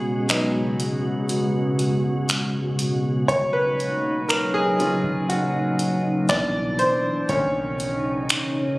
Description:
contemporary R&B; 60 BPM; 4/4; straight; Eb minor; A4 = 436 Hz
clear grand piano; accompaniment; 0.0-8.8 s; B2 to D5; -24 LUFS; equal
glassy FM pad; sustained chords; 0.0-8.8 s; Bb2 to Gb4; -24 LUFS; equal; ensemble chorus, built-in reverb, sidechain pumping
booming analog drum machine; drums; 0.3-8.5 s; finger snaps, hi-hat, kick drum; -26 LUFS; equal
clean 808-style bass; bass; 3.3-8.2 s; Eb1 to C2; -36 LUFS; equal
moderate lush hall reverb, RT60 2.5 s; recorded on a phone in the room, studio reverb, compression; -20 LUFS; side -21 dB against mid
0.0-8.8 A section
break 0.0-3.3; grand piano solo 0.0-8.8
0.0 Db7sus4; 3.3 Ebm7; 6.3 Cmaj9; 7.3 Bmaj9

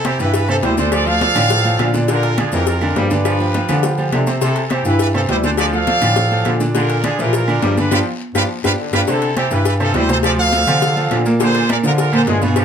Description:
latin, salsa; 206 BPM; 4/4; straight; C major; A4 = 440 Hz
bright trumpet section; melody; 0.0-12.6 s; D4 to F5; -20 LUFS; right 1 dB
congas; percussion; 0.0-12.6 s; -26 LUFS; left 3 dB
cowbell; percussion; 0.0-12.6 s; -25 LUFS; left 9 dB
guiro; percussion; 0.0-12.6 s; -35 LUFS; left 5 dB
maracas; percussion; 0.0-12.6 s; -33 LUFS; left 5 dB
bright concert grand piano; accompaniment; 0.1-12.6 s; Bb2 to D5; -20 LUFS; right 2 dB
claves; percussion; 0.1-12.6 s; -31 LUFS; right 4 dB
timbales and agogo bells; percussion; 0.1-12.6 s; -27 LUFS; right 5 dB
bright trombone section; second line; 0.2-12.6 s; C3 to Ab3; -24 LUFS; left 3 dB
breathy bass clarinet; bass; 0.2-12.6 s; D2 to D3; -19 LUFS; equal
moderate studio ambience, RT60 0.5 s; -14 LUFS; side -8 dB against mid
0.0-9.1 A section; 9.1-12.6 A section
drum fill 7.9-9.1; band accent 7.9-9.1
0.0 C; 0.9 Dm; 2.1 Bb7; 3.3 G7; 4.4 C; 5.6 Dm; 6.7 Bb7; 7.9 G7; 9.1 C; 10.2 Dm7; 11.4 Bb7

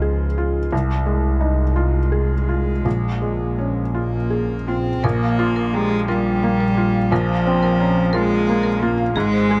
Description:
neoclassical piano and strings; 54-60 BPM (dotted quarters); 6/8; rubato; A4 = 440 Hz
rich cello; second line; 0.0-9.6 s; F3 to C4; -24 LUFS; equal
felt-muted upright piano; accompaniment; 0.0-9.6 s; Bb1 to Ab4; -24 LUFS; equal
warm double bass; bass; 0.0-9.6 s; Ab1 to Db2; -24 LUFS; equal
marimba with medium mallets; arpeggios; 5.0-9.6 s; Ab4 to C6; -31 LUFS; equal; analog delay
light reverb; close, detailed microphones; -20 LUFS; mono
0.0-5.0 A section; 5.0-9.6 B section
0.0 Dbadd9; 0.7 Fm7/C; 2.8 Bbm7; 5.0 Bbsus2

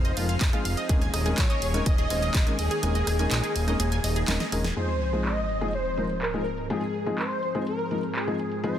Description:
progressive house; 124 BPM; 4/4; straight; Ab major; A4 = 440 Hz
expressive synth lead; melody; 0.0-8.8 s; Ab4 to Eb5; -32 LUFS; left 1 dB; ensemble chorus, sidechain pumping, digital delay
soft supersaw; second line; 0.0-8.8 s; Ab4 to Eb5; -38 LUFS; equal; cassette tape, sidechain pumping, digital delay
lush unison pad; sustained chords; 0.0-8.8 s; Ab2 to Ab4; -34 LUFS; equal; chorus, sidechain pumping
wide unison pluck; arpeggios; 0.0-4.7 s; F4 to Ab6; -34 LUFS; right 2 dB; sidechain pumping, digital delay
fat analog bass; bass; 0.0-4.7 s; Eb1 to Bb1; -27 LUFS; equal; sidechain pumping
big-room dance drum kit; drums; 0.0-8.8 s; handclaps, hi-hat, ride cymbal, rim click, snare drum; -33 LUFS; right 1 dB; low-pass filter on hats, low-pass filter on cymbals, low-pass filter on snare
felt-muted upright piano; stabs; 0.2-8.7 s; F3 to C5; -31 LUFS; left 3 dB; sidechain pumping
electronic kick drum; drums; 0.4-2.4 s; -23 LUFS; equal
sub drop; sound effects; 4.8-6.7 s; -32 LUFS; equal
light reverb, digital ambience; dense, heavily limited modern master; -24 LUFS; side -10 dB against mid
0.0-4.8 A section; 4.8-8.8 B section
drop 0.0-4.8; kick drops out 2.8-4.8; drum fill 4.3-4.8; band accent 4.6; impact 4.8-6.7; filter sweep on analog synth pad 4.8-8.8
0.0 Fm7; 0.9 Eb7sus4; 4.8 Ab6

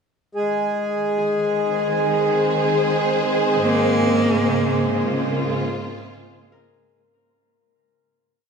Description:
ambient; 73 BPM; 4/4; straight; Ab major; A4 = 439 Hz
hand-pumped harmonium; drone; 0.3-7.0 s; Ab3 to Ab4; -22 LUFS; equal
warm studio string section; sustained chords; 0.4-6.9 s; Ab2 to C5; -22 LUFS; right 1 dB
Celtic harp; arpeggios; 1.2-8.5 s; Ab4 to Bb4; -30 LUFS; left 4 dB
clear cello; melody; 3.7-5.3 s; Bb3; -21 LUFS; equal; tape echo
wet cathedral reverb, RT60 5.7 s; in a vast, echoing space; -18 LUFS; side -5 dB against mid
0.4-6.9 A section
fade-in on string section 0.4-6.9; fade-out 3.6-6.9
0.4 Ab; 3.6 Bbmadd9/Ab

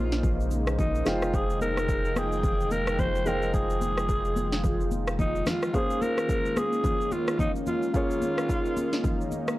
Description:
amapiano; 109 BPM; 4/4; swing 58% on 16ths; Bb dorian; A4 = 441 Hz
growling alto saxophone; melody; 0.0-9.3 s; Eb4 to C5; -29 LUFS; equal
warm grand piano; accompaniment; 0.0-9.6 s; Ab3 to G5; -33 LUFS; equal
lush unison pad; sustained chords; 0.0-9.6 s; Db3 to G5; -33 LUFS; equal; chorus
warm sub bass; bass; 0.0-5.4 s; F1 to Bb1; -31 LUFS; equal
downlifter; sound effects; 0.0-1.3 s; -52 LUFS; equal
afro-pop drum kit; drums; 0.1-9.6 s; kick drum, rim click, shaker, snare drum; -29 LUFS; equal; overdrive
congas; percussion; 0.2-9.5 s; -35 LUFS; left 2 dB
digital ambience; dry, gritty hardware recording, cassette tape; -24 LUFS; side -17 dB against mid
0.0-9.6 A section
0.0 Bbm9; 1.1 Fm9; 5.7 Bbm9

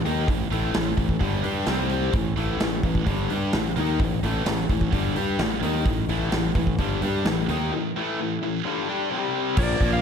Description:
hard rock; 129 BPM; 4/4; straight; A phrygian; A4 = 440 Hz
overdriven electric guitar; riff; 0.0-10.0 s; G2 to G4; -28 LUFS; left 9 dB; slapback echo
fuzz fingered electric bass; bass; 0.0-10.0 s; G1 to G2; -27 LUFS; equal; overdrive
heavy high-gain guitar; riff; 0.1-10.0 s; G2 to G4; -29 LUFS; right 10 dB; distortion, slapback echo
big rock drum kit; drums; 0.1-9.9 s; crash cymbal, hi-hat, kick drum, snare drum; -26 LUFS; right 1 dB
lightly driven lead guitar; melody; 9.6-10.0 s; D5 to F5; -27 LUFS; left 1 dB
distorted electric guitar; riff; 9.6-10.0 s; Bb2 to Bb3; -32 LUFS; right 1 dB; overdrive, slapback echo
moderate lush hall reverb, RT60 1.9 s, small room ambience; big arena sound; -22 LUFS; side -7 dB against mid
0.0-9.6 A section
break 7.7-9.6
0.0 A5; 1.7 C5; 2.1 A5; 9.1 C5

